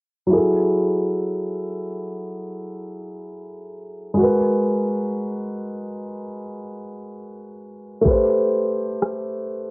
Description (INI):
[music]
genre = contemporary R&B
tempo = 62 BPM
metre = 4/4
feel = swing 58% on 16ths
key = unclear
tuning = A4 = 442 Hz
[part]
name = felt-muted upright piano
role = accompaniment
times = 0.3-9.7 s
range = F#3 to C5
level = -21 LUFS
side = equal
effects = none
[part]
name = trap drum kit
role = drums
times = 8.1-9.3 s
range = kick drum, rim click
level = -20 LUFS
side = equal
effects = cassette tape
[sound]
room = light reverb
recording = home recording on cassette, low-pass filter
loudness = -19 LUFS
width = side -30 dB against mid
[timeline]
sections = 0.3-9.7 A section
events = filter sweep 0.3-9.7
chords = 0.3 F#m9; 4.2 G#m9; 8.1 Am9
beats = | 0.31 1.28 2.25 3.22 | 4.18 5.15 6.12 7.09 | 8.05 9.02